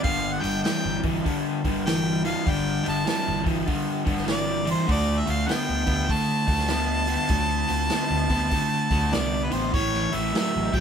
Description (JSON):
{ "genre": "blues rock power trio and southern rock", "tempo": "99 BPM", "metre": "4/4", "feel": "swing 64% on 8ths", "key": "D minor", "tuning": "A4 = 439 Hz", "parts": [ { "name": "bright harmonica", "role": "melody", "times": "0.0-10.8 s", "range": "B4 to A5", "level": "-27 LUFS", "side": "right 1 dB", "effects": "overdrive" }, { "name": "overdriven tonewheel organ", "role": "sustained chords", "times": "0.0-10.8 s", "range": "Bb3 to C5", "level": "-41 LUFS", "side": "right 2 dB", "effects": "none" }, { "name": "raw garage guitar", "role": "riff", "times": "0.0-10.8 s", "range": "G2 to B3", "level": "-25 LUFS", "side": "left 1 dB", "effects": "overdrive" }, { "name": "fingered electric bass", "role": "bass", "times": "0.0-10.8 s", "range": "G1 to D2", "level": "-30 LUFS", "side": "equal", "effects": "none" }, { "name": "vintage drum kit", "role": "drums", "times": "0.0-10.8 s", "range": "hi-hat, kick drum, snare drum", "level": "-29 LUFS", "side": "equal", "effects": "none" } ], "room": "moderate studio reverb, RT60 0.6 s", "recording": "band playing live in one room", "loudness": "-22 LUFS", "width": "side -7 dB against mid", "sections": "0.0-10.8 A section", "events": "none", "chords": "0.1 Gm9; 4.9 Dm9; 9.7 A7b9", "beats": "| 0.05 0.66 1.26 1.87 | 2.47 3.08 3.68 4.28 | 4.89 5.49 6.10 6.70 | 7.31 7.92 8.52 9.13 | 9.74 10.35" }